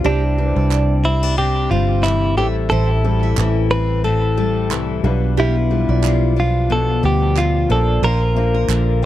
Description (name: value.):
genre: acoustic pop.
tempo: 90 BPM.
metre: 4/4.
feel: swing 55% on 16ths.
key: C major.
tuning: A4 = 438 Hz.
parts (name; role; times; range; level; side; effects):
fingerpicked twelve-string acoustic guitar; accompaniment; 0.0-9.1 s; A2 to F4; -23 LUFS; left 10 dB; none.
warm upright piano; accompaniment; 0.0-9.1 s; F3 to C5; -28 LUFS; left 2 dB; none.
picked steel-string acoustic guitar; arpeggios; 0.0-9.0 s; G4 to E5; -28 LUFS; right 12 dB; none.
vintage muted fingered electric bass; bass; 0.0-9.1 s; G1 to D2; -17 LUFS; right 1 dB; none.
direct-recorded clean electric guitar; melody; 0.1-9.0 s; D4 to B4; -21 LUFS; right 1 dB; tape echo.
group handclap; percussion; 0.7-8.9 s; none; -27 LUFS; right 14 dB; none.
room: little or no reverb.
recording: dry, close 1970s-style studio recording.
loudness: -15 LUFS.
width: side -13 dB against mid.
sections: 0.0-9.1 A section.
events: none.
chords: 0.0 Cadd9; 2.4 Am7; 5.0 G7/B; 7.7 Bbadd9.